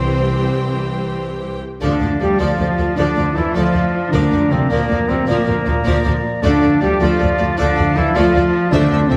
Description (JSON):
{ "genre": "cinematic, heroic adventure film score", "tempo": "104 BPM (dotted quarters)", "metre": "12/8", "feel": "straight", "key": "D minor", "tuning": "A4 = 440 Hz", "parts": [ { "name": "rich symphonic violin section", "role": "melody", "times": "0.0-9.2 s", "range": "C5 to E5", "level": "-30 LUFS", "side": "equal", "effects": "none" }, { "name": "rich symphonic violin section", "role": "second line", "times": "0.0-9.2 s", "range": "A4 to G5", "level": "-34 LUFS", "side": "equal", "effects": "none" }, { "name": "rich symphonic viola section", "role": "accompaniment", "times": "0.0-9.2 s", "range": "E3 to G4", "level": "-29 LUFS", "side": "equal", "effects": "none" }, { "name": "warm trombone section", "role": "sustained chords", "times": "0.0-9.2 s", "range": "E3 to C4", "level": "-29 LUFS", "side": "equal", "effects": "none" }, { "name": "warm trumpet", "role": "stabs", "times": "0.0-9.2 s", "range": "Bb3 to C5", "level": "-26 LUFS", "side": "equal", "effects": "none" }, { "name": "rich symphonic double bass section", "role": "bass", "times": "0.0-9.2 s", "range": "C2 to D2", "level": "-23 LUFS", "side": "equal", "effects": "none" }, { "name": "warm studio cello section", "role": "bass", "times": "0.0-9.2 s", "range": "Bb2 to C4", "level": "-24 LUFS", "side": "equal", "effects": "none" }, { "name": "clear oboe", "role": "second line", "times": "1.8-9.2 s", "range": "A5 to Bb5", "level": "-30 LUFS", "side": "equal", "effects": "none" }, { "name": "mellow clarinet", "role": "second line", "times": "1.8-9.2 s", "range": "C5 to D5", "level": "-31 LUFS", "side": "equal", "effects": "none" }, { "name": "mellow hollow silver concert flute", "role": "second line", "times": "1.8-9.2 s", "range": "A4 to F5", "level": "-31 LUFS", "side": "equal", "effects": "none" }, { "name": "dark French horn section", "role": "sustained chords", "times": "1.8-9.2 s", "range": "Bb3 to G4", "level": "-23 LUFS", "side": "equal", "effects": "none" }, { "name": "timpani", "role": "percussion", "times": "4.1-4.7, 8.7-9.2 s", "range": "D3", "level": "-24 LUFS", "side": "equal", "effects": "none" } ], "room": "moderate scoring stage reverb, RT60 1.8 s", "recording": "none", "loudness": "-17 LUFS", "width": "mono", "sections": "0.0-1.8 A section; 1.8-9.2 B section", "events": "none", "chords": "0.0 C; 1.8 Dm; 4.1 Bb/D; 6.4 Dm" }